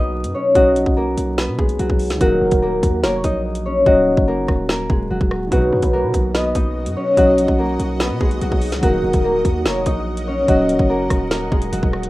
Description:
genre	hip hop, drill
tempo	145 BPM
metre	4/4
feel	half-time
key	Eb minor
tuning	A4 = 441 Hz
part	concert harp	melody	0.0-12.1 s	F#3 to D#5	-18 LUFS	left 1 dB	none
part	warm velvety synth lead	second line	0.0-10.9 s	Bb4 to D#5	-23 LUFS	equal	chorus, digital delay
part	felt-muted upright piano	accompaniment	0.0-12.1 s	B2 to D#4	-31 LUFS	equal	none
part	hard-hitting 808-style bass	bass	0.0-12.1 s	Eb1 to B2	-24 LUFS	equal	none
part	drill drum kit	drums	0.2-12.1 s	hi-hat, kick drum, rim click, snare drum	-19 LUFS	equal	vintage 12-bit sampler grit
part	granular cloud pad	sustained chords	6.1-12.1 s	F#4 to D#6	-31 LUFS	right 1 dB	built-in reverb
room	little or no reverb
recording	rough home demo mix, vinyl crackle, low-pass filter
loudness	-15 LUFS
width	side -18 dB against mid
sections	0.0-12.1 A section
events	hi-hats muted 3.9-5.5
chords	0.0 B; 2.2 Ebm; 5.5 B; 8.8 Ebm

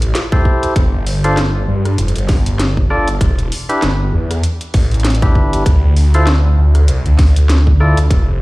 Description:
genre	glitch hop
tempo	98 BPM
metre	4/4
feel	swing 57% on 16ths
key	D dorian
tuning	A4 = 436 Hz
part	phased detuned saw bass	bass	0.0-8.4 s	E1 to G2	-12 LUFS	equal	phaser, overdrive
part	drum and bass drum kit	drums	0.0-8.2 s	hi-hat, rim click, snare drum	-22 LUFS	equal	none
part	percussive tonewheel organ	stabs	0.3-8.0 s	D4 to D5	-20 LUFS	equal	overdrive, sidechain pumping, tape echo
part	electronic kick drum	drums	0.3-8.2 s	none	-12 LUFS	equal	none
room	digital ambience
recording	played on a big sound system in a bare room, large studio reverb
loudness	-11 LUFS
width	side -21 dB against mid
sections	0.0-8.4 A section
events	none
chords	0.0 Fmaj7 (rootless); 0.8 G7(no3); 3.2 Em7; 5.7 Dm7

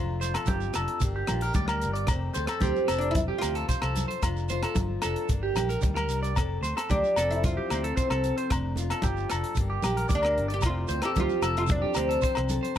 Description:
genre	highlife guitar band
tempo	112 BPM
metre	4/4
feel	straight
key	F major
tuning	A4 = 440 Hz
part	nylon-string guitar	accompaniment	0.0-12.8 s	F2 to A4	-36 LUFS	left 6 dB	none
part	fingered electric bass	bass	0.0-12.6 s	F1 to D2	-31 LUFS	equal	none
part	electric guitar at the edge of break-up	arpeggios	0.2-12.8 s	G4 to D5	-31 LUFS	right 3 dB	phaser, slapback echo
part	tight funk drum kit	drums	0.2-12.8 s	hi-hat, kick drum, rim click	-30 LUFS	equal	none
part	congas	percussion	0.2-12.6 s	none	-36 LUFS	right 1 dB	none
part	shekere	percussion	0.2-12.8 s	none	-37 LUFS	right 4 dB	none
part	agogo bells	percussion	0.3-12.8 s	none	-36 LUFS	left 4 dB	none
part	oud	melody	2.6-12.5 s	C4 to G4	-29 LUFS	equal	none
room	light reverb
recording	none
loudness	-24 LUFS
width	side -10 dB against mid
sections	0.0-12.8 A section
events	none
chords	0.0 F; 1.0 Gm; 2.1 F; 5.3 Gm; 6.4 F; 8.5 Dm/F; 9.6 Gm; 10.6 F

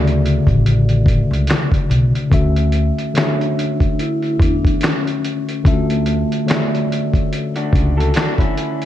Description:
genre	lo-fi hip hop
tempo	72 BPM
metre	4/4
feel	swing 58% on 16ths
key	D major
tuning	A4 = 440 Hz
part	vibraphone with soft mallets	melody	0.0-7.3 s	A3 to D5	-24 LUFS	left 1 dB	none
part	mellow tine electric piano	accompaniment	0.0-8.9 s	C#3 to E5	-19 LUFS	left 2 dB	cassette tape
part	upright bass	bass	0.0-8.1 s	A1 to E2	-17 LUFS	equal	none
part	dusty soul sampler-style drum kit	drums	0.1-8.9 s	handclaps, hi-hat, kick drum, snare drum	-18 LUFS	equal	none
part	electric guitar through a small old amp	second line	7.6-8.9 s	C#4 to A4	-22 LUFS	left 1 dB	ping-pong delay
room	moderate plate reverb, RT60 1.7 s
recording	dreamy mix soaked in reverb, cassette tape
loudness	-14 LUFS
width	side -12 dB against mid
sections	0.0-2.3 A section; 2.3-8.9 B section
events	none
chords	0.0 Dmaj9

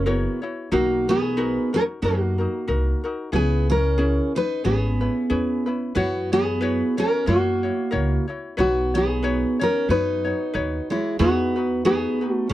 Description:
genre	Hawaiian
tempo	92 BPM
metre	4/4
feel	swing 56% on 8ths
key	B major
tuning	A4 = 444 Hz
part	nylon-string guitar	melody	0.0-12.5 s	E4 to B4	-23 LUFS	left 1 dB	none
part	picked steel-string acoustic guitar	second line	0.0-12.5 s	G#3 to D#4	-26 LUFS	right 4 dB	none
part	ukulele	accompaniment	0.0-12.5 s	C#4 to C#5	-28 LUFS	left 3 dB	none
part	upright bass	bass	0.0-12.5 s	F#1 to F#2	-25 LUFS	equal	none
room	little or no reverb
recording	dry, close 1970s-style studio recording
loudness	-20 LUFS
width	side -14 dB against mid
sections	0.7-11.2 A section; 11.2-12.5 B section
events	none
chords	0.0 F#7; 0.7 Bmaj7; 3.3 C#m7; 6.0 F#7sus4; 7.3 F#7; 8.6 Badd9; 11.2 Emaj9

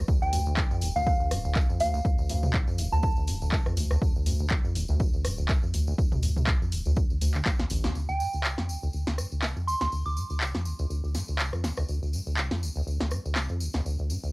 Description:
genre	acid house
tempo	122 BPM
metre	4/4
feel	swing 55% on 16ths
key	D minor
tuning	A4 = 442 Hz
part	deep acid bass	riff	0.0-14.3 s	C2 to D3	-29 LUFS	equal	lush chorus, sidechain pumping
part	round analog bass	bass	0.0-7.9 s	D1 to D2	-28 LUFS	equal	tube saturation, sidechain pumping
part	electronic kick drum	drums	0.1-7.6 s	none	-26 LUFS	equal	overdrive
part	tambourine	percussion	0.1-14.3 s	none	-42 LUFS	left 1 dB	none
part	soft synth bell	melody	0.2-3.1, 8.1-10.4 s	F5 to D6	-31 LUFS	right 1 dB	chorus, phaser, cassette tape, analog delay
part	punchy analog drum machine	drums	0.3-13.8 s	handclaps, hi-hat, rim click, snare drum, toms	-31 LUFS	equal	overdrive
room	light reverb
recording	home recording on cassette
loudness	-25 LUFS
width	side -24 dB against mid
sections	0.0-8.0 A section; 8.0-14.3 B section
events	drum fill 7.5-8.0; band accent 7.8; filter sweep on acid bass 8.0-14.3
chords	0.0 D5; 8.0 N.C.

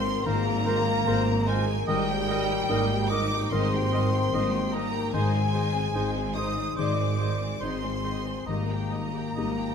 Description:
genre	cinematic, emotional film score for orchestra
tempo	73 BPM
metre	4/4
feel	rubato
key	Ab lydian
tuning	A4 = 438 Hz
part	rich studio violin section	melody	0.0-9.7 s	G5 to Eb6	-34 LUFS	right 1 dB	none
part	mellow hollow silver concert flute	second line	0.0-9.7 s	G5 to Eb6	-35 LUFS	equal	none
part	mellow oboe	second line	0.0-9.5 s	C5 to Eb5	-38 LUFS	right 2 dB	none
part	rich studio violin section	second line	0.0-9.7 s	G4 to G5	-38 LUFS	equal	none
part	felt-muted upright piano	accompaniment	0.0-9.7 s	Ab1 to Bb4	-32 LUFS	left 2 dB	none
part	rich studio viola section	accompaniment	0.0-9.7 s	G3 to G4	-37 LUFS	right 2 dB	none
part	mellow French horn section	sustained chords	0.0-9.7 s	G3 to D5	-31 LUFS	left 5 dB	none
part	concert harp	arpeggios	0.0-9.7 s	Ab2 to Bb4	-36 LUFS	left 12 dB	none
part	rich studio cello section	bass	0.0-9.7 s	Ab2	-32 LUFS	right 3 dB	none
part	rich studio double bass section	bass	0.0-9.7 s	Ab1	-33 LUFS	right 3 dB	none
part	warm clarinet	second line	0.3-9.5 s	G4 to Bb4	-38 LUFS	left 2 dB	none
room	moderate scoring stage reverb, RT60 1.8 s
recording	none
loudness	-24 LUFS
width	side -7 dB against mid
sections	0.0-9.7 A section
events	none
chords	0.0 Bbsus2/Ab; 1.9 Eb/Ab; 5.1 Ab; 8.5 Eb/Ab

